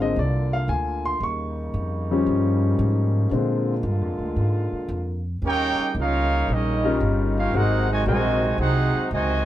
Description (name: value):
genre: jazz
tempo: 114 BPM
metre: 4/4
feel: swing 69% on 8ths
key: Eb major from 5.4 s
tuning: A4 = 440 Hz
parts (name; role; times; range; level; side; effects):
- clear concert grand piano; accompaniment; 0.0-8.4 s; D3 to Db6; -24 LUFS; left 3 dB; none
- clear trombone section; sustained chords; 0.0-9.5 s; C3 to F4; -31 LUFS; equal; none
- upright bass; bass; 0.0-9.5 s; G1 to Bb2; -24 LUFS; equal; none
- bright trombone section; second line; 5.4-9.5 s; C3 to G4; -28 LUFS; right 3 dB; none
- warm trumpet section; melody; 5.5-9.5 s; Db4 to Ab5; -24 LUFS; right 1 dB; none
room: moderate studio reverb, RT60 0.5 s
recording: heard from further back in the room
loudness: -20 LUFS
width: side -13 dB against mid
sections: 0.0-5.4 A section; 5.4-9.5 B section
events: grand piano solo 0.0-5.4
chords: 0.0 Bb7; 1.2 Eb7; 3.3 Bb7; 5.4 Eb7; 7.5 Ab7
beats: 0.16 0.69 | 1.22 1.74 2.27 2.79 | 3.32 3.85 4.37 4.90 | 5.43 5.95 6.48 7.01 | 7.54 8.06 8.59 9.12